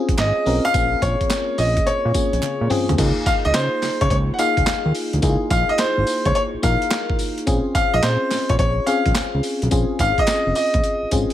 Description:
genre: R&B, new jack swing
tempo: 107 BPM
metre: 4/4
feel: swing 66% on 16ths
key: Db major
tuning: A4 = 440 Hz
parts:
  - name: FM electric piano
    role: accompaniment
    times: 0.0-11.3 s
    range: Bb3 to Bb4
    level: -24 LUFS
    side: left 2 dB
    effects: chorus
  - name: boom bap sampler-style drum kit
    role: drums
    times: 0.1-11.3 s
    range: crash cymbal, handclaps, hi-hat, kick drum, snare drum, tambourine, toms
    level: -23 LUFS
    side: equal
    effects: none
  - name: bright grand piano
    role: melody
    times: 0.2-11.1 s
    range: C5 to Gb5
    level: -21 LUFS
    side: left 1 dB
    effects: none
  - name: fat analog bass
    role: bass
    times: 0.2-11.3 s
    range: F1 to Db3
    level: -21 LUFS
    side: equal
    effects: none
  - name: group handclap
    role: percussion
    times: 0.2-10.4 s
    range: none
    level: -35 LUFS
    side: right 9 dB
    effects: none
room: light reverb, digital ambience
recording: none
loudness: -17 LUFS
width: side -12 dB against mid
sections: 0.0-3.0 A section; 3.0-11.3 B section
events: drum fill 2.4-3.0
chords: 0.0 Bbm9; 3.0 Db6; 7.5 Bbm9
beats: 0.18 | 0.74 1.30 1.86 2.42 | 2.99 3.55 4.11 4.67 | 5.23 5.79 6.35 6.91 | 7.47 8.03 8.59 9.15 | 9.71 10.28 10.84

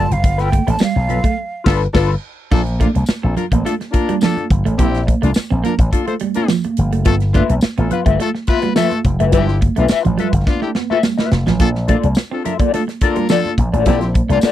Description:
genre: funk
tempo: 106 BPM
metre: 4/4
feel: straight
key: unclear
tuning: A4 = 439 Hz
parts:
  - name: breathy jazz flute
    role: melody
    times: 0.0-1.6 s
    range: F5 to A5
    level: -21 LUFS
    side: right 3 dB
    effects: none
  - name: mellow electric guitar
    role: accompaniment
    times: 0.0-2.2, 7.3-14.5 s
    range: F4 to F5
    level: -19 LUFS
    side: left 9 dB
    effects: wah, tremolo
  - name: semi-hollow electric guitar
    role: riff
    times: 0.0-14.5 s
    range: F3 to C4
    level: -22 LUFS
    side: right 8 dB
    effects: vibrato effect
  - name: slap bass with an envelope filter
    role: bass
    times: 0.0-14.5 s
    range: F1 to C2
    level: -17 LUFS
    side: equal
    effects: none
  - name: tight funk drum kit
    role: drums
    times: 0.1-14.5 s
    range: crash cymbal, hi-hat, kick drum, snare drum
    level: -17 LUFS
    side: equal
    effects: none
  - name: congas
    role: percussion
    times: 0.2-14.5 s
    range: none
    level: -25 LUFS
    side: right 4 dB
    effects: none
  - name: tambourine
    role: percussion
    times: 0.8-14.5 s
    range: none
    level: -33 LUFS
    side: left 4 dB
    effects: none
  - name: warm horn section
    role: second line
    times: 1.7-14.4 s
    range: A3 to C5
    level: -20 LUFS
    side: left 5 dB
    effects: none
room: little or no reverb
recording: dry, close 1970s-style studio recording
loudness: -14 LUFS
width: side -12 dB against mid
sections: 0.0-2.5 A section; 2.5-14.5 B section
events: flute solo 0.0-2.5; band accent 0.2-2.5; drum fill 10.5-11.6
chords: 0.0 G9; 2.5 Bbmaj7; 7.1 G13; 11.6 Bbmaj7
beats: | 0.24 0.81 1.38 1.95 | 2.52 3.08 3.65 4.22 | 4.79 5.36 5.93 6.49 | 7.06 7.63 8.20 8.76 | 9.33 9.90 10.47 11.03 | 11.60 12.17 12.73 13.30 | 13.87 14.43

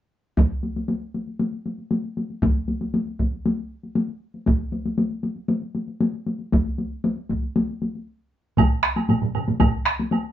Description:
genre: japanese traditional, taiko drum ensemble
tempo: 117 BPM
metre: 4/4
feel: straight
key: none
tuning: none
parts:
  - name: solo taiko drums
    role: percussion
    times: 0.4-10.2 s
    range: none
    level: -24 LUFS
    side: left 2 dB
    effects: none
  - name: taiko ensemble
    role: percussion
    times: 0.4-9.7 s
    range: none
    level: -23 LUFS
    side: right 1 dB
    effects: none
  - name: solo taiko drums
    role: percussion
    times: 8.6-10.0 s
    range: none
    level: -24 LUFS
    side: right 5 dB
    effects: none
  - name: taiko ensemble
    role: percussion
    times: 8.6-10.0 s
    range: none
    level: -28 LUFS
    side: right 1 dB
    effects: none
  - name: woodblock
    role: percussion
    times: 8.6-10.2 s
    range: none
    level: -28 LUFS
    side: right 6 dB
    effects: none
room: moderate studio ambience, RT60 0.5 s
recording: band playing live in one room, nothing above 7.6 kHz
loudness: -22 LUFS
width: side -11 dB against mid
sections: 0.4-8.6 A section; 8.6-10.3 B section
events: break 8.1-8.6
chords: none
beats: | 0.38 0.89 1.40 1.92 | 2.43 2.94 3.45 3.97 | 4.48 4.99 5.50 6.02 | 6.53 7.04 7.55 8.07 | 8.58 9.09 9.60 10.11

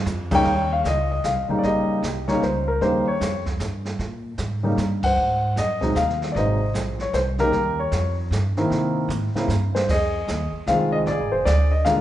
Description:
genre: jazz piano trio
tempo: 153 BPM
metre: 3/4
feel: swing 64% on 8ths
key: Eb mixolydian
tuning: A4 = 439 Hz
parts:
  - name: upright bass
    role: bass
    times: 0.0-12.0 s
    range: F1 to C3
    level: -25 LUFS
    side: right 1 dB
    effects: none
  - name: jazz brush drum kit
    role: drums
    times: 0.1-12.0 s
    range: brushed snare drum, crash cymbal, hi-hat, kick drum, snare drum, toms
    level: -30 LUFS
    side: right 2 dB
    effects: none
  - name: warm concert grand piano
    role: melody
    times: 0.3-12.0 s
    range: C3 to G5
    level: -21 LUFS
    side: left 1 dB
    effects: none
room: wet recital hall reverb, RT60 1.4 s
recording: recorded in a church or concert hall, nothing above 10.8 kHz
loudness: -20 LUFS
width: side -12 dB against mid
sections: 0.5-12.0 A section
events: band accent 5.0; drum fill 9.1-9.9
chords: 0.5 Eb7; 4.0 Bb7(no3); 4.8 Gsus4; 5.2 Ab7; 7.5 Eb7; 8.7 C7; 9.9 Fm7; 11.1 Bb7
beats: 0.07 | 0.46 0.85 1.24 | 1.64 2.03 2.42 | 2.81 3.21 3.60 | 3.99 4.38 4.78 | 5.17 5.56 5.96 | 6.35 6.74 7.13 | 7.53 7.92 8.31 | 8.71 9.10 9.49 | 9.88 10.28 10.67 | 11.06 11.46 11.85

